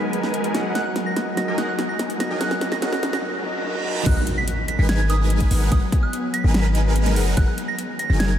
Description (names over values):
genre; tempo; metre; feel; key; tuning
future bass; 145 BPM; 4/4; half-time; G# minor; A4 = 440 Hz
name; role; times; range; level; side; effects
soft synth bell; melody; 0.0-8.4 s; D#6 to B6; -29 LUFS; right 3 dB; chorus, sidechain pumping, diffuse ambient delay
warm grand piano; accompaniment; 0.0-4.1 s; F#3 to A#5; -31 LUFS; right 1 dB; sidechain pumping, diffuse ambient delay
ethereal airy pad; sustained chords; 0.0-8.4 s; D#3 to G#5; -31 LUFS; left 2 dB; ensemble chorus, built-in reverb, sidechain pumping
supersaw chords; riff; 0.0-8.4 s; F#3 to G#5; -28 LUFS; equal; phaser, sidechain pumping, low-pass filter, diffuse ambient delay
riser, reverse cymbal and impact; sound effects; 0.2-5.7 s; none; -32 LUFS; equal; none
pop drum kit; drums; 0.1-8.3 s; crash cymbal, hi-hat, snare drum; -28 LUFS; equal; overdrive
warm 808-style bass; bass; 4.1-8.4 s; F#1 to G#1; -19 LUFS; equal; sidechain pumping
electronic kick drum; drums; 4.1-7.5 s; none; -20 LUFS; equal; overdrive
room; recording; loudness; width
moderate huge ambient reverb, RT60 7.9 s; dreamy mix soaked in reverb, high-pass filter; -19 LUFS; side -10 dB against mid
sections
0.0-4.1 A section; 4.1-8.4 B section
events
build-up 0.0-4.1; drum fill 0.0-3.2; filter sweep 0.0-4.1; riser 0.2-4.1; break 3.2-4.1; reverse cymbal 3.2-4.1; drop 4.1-8.4; impact 4.1-5.7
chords
0.0 G#m9; 0.5 F#6; 4.1 G#m9; 7.2 F#6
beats
0.34 | 0.75 1.17 1.58 1.99 | 2.41 2.82 3.23 3.65 | 4.06 4.48 4.89 5.30 | 5.72 6.13 6.55 6.96 | 7.37 7.79 8.20